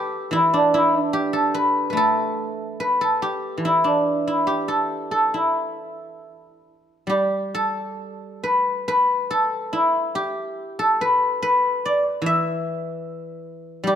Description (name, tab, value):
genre	chinese traditional, Chinese solo plucked strings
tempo	66-75 BPM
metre	4/4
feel	rubato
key	E yu mode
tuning	A4 = 440 Hz
part	guzheng	solo	0.0-14.0 s	E3 to E5	-19 LUFS	equal	none
room	light reverb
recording	close, detailed microphones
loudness	-19 LUFS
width	side -9 dB against mid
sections	0.0-7.1 A section; 7.1-14.0 B section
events	none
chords	none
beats	| 0.33 1.13 1.94 2.77 | 3.60 4.45 5.30 6.19 | 7.09 7.98 8.85 9.71 | 10.56 11.40 12.23 13.04 | 13.85